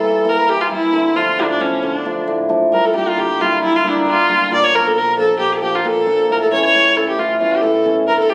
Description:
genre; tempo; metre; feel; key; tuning
klezmer; 134 BPM; 2/4; straight; unclear; A4 = 440 Hz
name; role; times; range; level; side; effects
warm viola; melody; 0.0-8.3 s; C#4 to D5; -17 LUFS; equal; none
hammered dulcimer; accompaniment; 0.0-8.3 s; A2 to E4; -20 LUFS; equal; none
room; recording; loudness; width
moderate small room reverb, RT60 0.5 s; recorded on a phone in the room, studio reverb, compression; -16 LUFS; mono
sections
0.0-2.7 A section; 2.7-8.3 B section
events
none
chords
0.0 Edim; 0.9 Dm; 2.7 Gm; 4.5 Bb; 6.3 A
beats
| 0.04 0.49 | 0.94 1.38 | 1.83 2.27 | 2.72 3.17 | 3.61 4.06 | 4.50 4.95 | 5.40 5.84 | 6.29 6.74 | 7.18 7.63 | 8.08

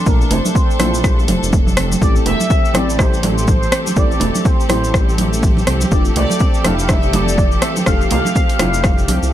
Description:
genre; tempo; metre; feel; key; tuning
afro house; 123 BPM; 4/4; swing 59% on 16ths; A phrygian; A4 = 440 Hz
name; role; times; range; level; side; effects
expressive synth lead; melody; 0.0-9.3 s; Bb4 to F5; -23 LUFS; equal; analog chorus, ping-pong delay
clear symphonic string section; sustained chords; 0.0-9.3 s; F3 to A4; -26 LUFS; equal; sidechain pumping
deep mellow chord stab; stabs; 0.0-9.3 s; Bb3 to A4; -26 LUFS; left 4 dB; chorus, phaser, sidechain pumping, ping-pong delay
handpan; arpeggios; 0.1-9.3 s; E3 to E4; -23 LUFS; right 3 dB; sidechain pumping, ping-pong delay
dark detuned saw bass; bass; 0.1-9.3 s; E1 to C2; -20 LUFS; equal; sidechain pumping
electronic kick drum; drums; 0.1-9.0 s; none; -15 LUFS; equal; overdrive
cabasa; percussion; 0.1-9.3 s; none; -28 LUFS; left 3 dB; none
deep house drum kit; drums; 0.3-9.2 s; hi-hat, rim click; -20 LUFS; equal; overdrive
congas; percussion; 0.3-9.2 s; none; -22 LUFS; right 2 dB; none
room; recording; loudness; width
little or no reverb; none; -12 LUFS; side -12 dB against mid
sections
0.0-9.3 A section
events
none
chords
0.0 Bbmaj7; 2.0 Am7; 5.9 F69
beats
| 0.07 0.55 1.04 1.53 | 2.02 2.50 2.99 3.48 | 3.97 4.46 4.94 5.43 | 5.92 6.41 6.89 7.38 | 7.87 8.36 8.85

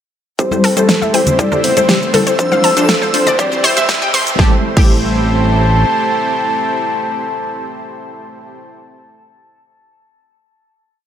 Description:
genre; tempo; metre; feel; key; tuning
progressive house; 120 BPM; 4/4; straight; A minor; A4 = 440 Hz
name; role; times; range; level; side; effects
soft octave-layered synth lead; melody; 0.4-9.0 s; A4 to A5; -18 LUFS; left 1 dB; chorus, tremolo, sidechain pumping, dub echo
supersaw pad; sustained chords; 0.4-8.6 s; E3 to C5; -22 LUFS; right 1 dB; sidechain pumping
analog pluck; arpeggios; 0.4-4.9 s; G4 to C6; -18 LUFS; left 2 dB; chorus, cassette tape, sidechain pumping, dub echo
wide unison pluck; stabs; 0.4-9.0 s; E3 to C5; -18 LUFS; left 2 dB; sidechain pumping, dub echo
fat analog bass; bass; 0.4-5.8 s; G1 to E2; -19 LUFS; right 1 dB; sidechain pumping, high-pass filter
big-room dance drum kit; drums; 0.4-4.9 s; crash cymbal, hi-hat, shaker, snare drum; -18 LUFS; equal; none
electronic kick drum; drums; 0.4-4.9 s; none; -13 LUFS; right 1 dB; high-pass filter on kick
riser; sound effects; 1.5-4.4 s; none; -26 LUFS; right 2 dB; none
backwards swelling texture; texture; 1.0-4.4 s; E6; -25 LUFS; left 1 dB; built-in reverb, sidechain pumping
congas; percussion; 0.5-4.2 s; none; -23 LUFS; left 1 dB; sidechain pumping on perc
room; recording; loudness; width
moderate recital hall reverb, RT60 1.4 s, digital ambience; high-pass filter; -11 LUFS; side -9 dB against mid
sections
0.4-4.4 build; 4.4-8.4 final chord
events
build-up 0.4-4.4; filter sweep on synth arpeggio sound 0.4-4.4; filter sweep on synth pluck 0.4-4.4; filter sweep 0.4-4.4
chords
0.4 Am7; 2.4 Dm7; 3.4 C; 4.4 Am7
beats
| 0.39 0.89 1.39 1.89 | 2.39 2.89 3.39 3.89 | 4.39 4.89 5.39 5.89 | 6.39 6.89 7.39 7.89

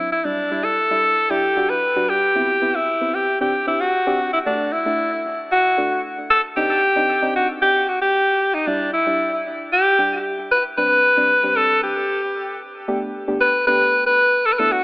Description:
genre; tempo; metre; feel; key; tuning
pop; 114 BPM; 4/4; straight; unclear; A4 = 439 Hz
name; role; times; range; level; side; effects
clear alto saxophone; melody; 0.0-14.8 s; D4 to B4; -16 LUFS; equal; tape echo
deep mellow chord stab; accompaniment; 0.0-14.8 s; G3 to G4; -26 LUFS; equal; chorus, tape echo
room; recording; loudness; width
moderate spring reverb, RT60 1.6 s, studio ambience; echo-heavy mix, telephone sound; -16 LUFS; side -24 dB against mid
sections
0.0-4.5 A section; 4.5-12.9 B section; 12.9-14.8 C section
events
none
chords
0.3 Em7; 2.4 Cmaj7; 3.4 D7sus4; 4.5 D; 6.6 Cmadd9; 8.7 Em7; 10.8 D7sus4; 12.9 Gadd9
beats
| 0.25 0.78 1.30 1.83 | 2.36 2.88 3.41 3.94 | 4.46 4.99 5.51 6.04 | 6.57 7.09 7.62 8.15 | 8.67 9.20 9.72 10.25 | 10.78 11.30 11.83 12.36 | 12.88 13.41 13.94 14.46

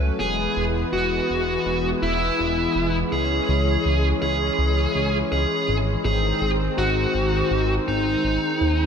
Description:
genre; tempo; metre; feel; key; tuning
synthwave; 82 BPM; 4/4; straight; C# minor; A4 = 440 Hz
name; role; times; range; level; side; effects
lush unison pad; sustained chords; 0.0-8.9 s; D#3 to C#4; -25 LUFS; equal; chorus
chorused synth bass; bass; 0.0-8.9 s; E1 to D#2; -24 LUFS; equal; none
dark smooth lead guitar; melody; 0.2-8.8 s; D#4 to G#4; -23 LUFS; equal; overdrive, digital delay
room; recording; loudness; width
moderate lush hall reverb, RT60 1.8 s, digital ambience; bright 1980s-style digital production; -20 LUFS; side -7 dB against mid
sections
0.0-8.9 A section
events
none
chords
0.2 E; 3.1 C#m; 6.0 G#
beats
| 0.20 0.93 1.66 2.39 | 3.12 3.85 4.59 5.32 | 6.05 6.78 7.51 8.24

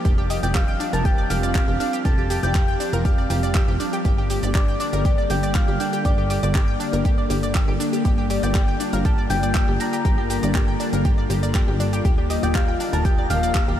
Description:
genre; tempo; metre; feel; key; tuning
progressive house; 120 BPM; 4/4; straight; G minor; A4 = 440 Hz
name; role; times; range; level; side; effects
evolving wavetable pad; sustained chords; 0.0-13.8 s; D3 to G4; -26 LUFS; left 1 dB; chorus, built-in reverb, sidechain pumping
analog pluck; arpeggios; 0.0-13.7 s; D4 to G6; -29 LUFS; equal; chorus, sidechain pumping, analog delay
plucky analog bass; bass; 0.1-13.8 s; Eb1 to G1; -25 LUFS; equal; sidechain pumping
deep house drum kit; drums; 0.1-13.7 s; handclaps, hi-hat, shaker; -32 LUFS; right 1 dB; overdrive
electronic kick drum; drums; 0.1-13.7 s; none; -20 LUFS; equal; none
soft octave-layered synth lead; melody; 0.3-13.8 s; D5 to Bb5; -29 LUFS; left 2 dB; chorus, phaser, cassette tape, analog delay
soft synth bell; second line; 0.3-13.8 s; D6 to Bb6; -33 LUFS; equal; chorus, sidechain pumping, analog delay
twinkling granular texture; texture; 12.7-13.8 s; Bb4; -39 LUFS; left 1 dB; none
room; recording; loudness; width
moderate huge ambient reverb, RT60 8.1 s; dreamy mix soaked in reverb; -18 LUFS; side -11 dB against mid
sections
0.0-13.8 A section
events
none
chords
0.1 Fsus2; 4.0 Gm; 12.1 Ebsus2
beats
| 0.05 0.55 1.05 1.55 | 2.05 2.55 3.05 3.55 | 4.05 4.55 5.05 5.55 | 6.05 6.55 7.05 7.55 | 8.05 8.55 9.05 9.55 | 10.05 10.55 11.05 11.55 | 12.05 12.55 13.05 13.55

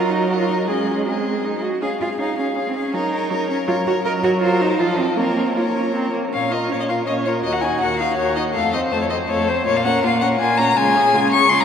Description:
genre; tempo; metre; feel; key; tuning
quick classical-period movement for string quartet; 162 BPM; 3/4; straight; Bb minor from 4.1 s; A4 = 440 Hz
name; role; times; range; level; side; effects
rich violin; melody; 0.0-11.6 s; C5 to Db6; -21 LUFS; left 4 dB; none
rich violin; second line; 0.0-11.6 s; F4 to Db5; -25 LUFS; left 1 dB; none
rich viola; accompaniment; 0.0-11.6 s; F3 to Gb4; -23 LUFS; right 2 dB; none
rich cello; bass; 0.0-11.6 s; Eb2 to Bb4; -23 LUFS; right 2 dB; none
room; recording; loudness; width
wet cathedral reverb, RT60 4.5 s; none; -17 LUFS; side -8 dB against mid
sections
0.0-6.3 A section; 6.3-11.6 B section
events
none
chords
0.0 Ebm/Gb; 0.7 Ab; 1.8 Db; 2.9 Gb; 4.1 Ebm/Gb (rootless); 4.4 Cm7b5/Gb; 4.8 F7; 5.2 Bbm; 7.5 Ebm; 8.6 F; 9.7 Bbm; 10.8 Db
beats
0.30 | 0.68 1.06 1.44 | 1.82 2.20 2.58 | 2.95 3.32 3.68 | 4.05 4.42 4.80 | 5.18 5.56 5.95 | 6.33 6.71 7.08 | 7.45 7.82 8.19 | 8.56 8.93 9.30 | 9.67 10.03 10.40 | 10.76 11.13 11.50

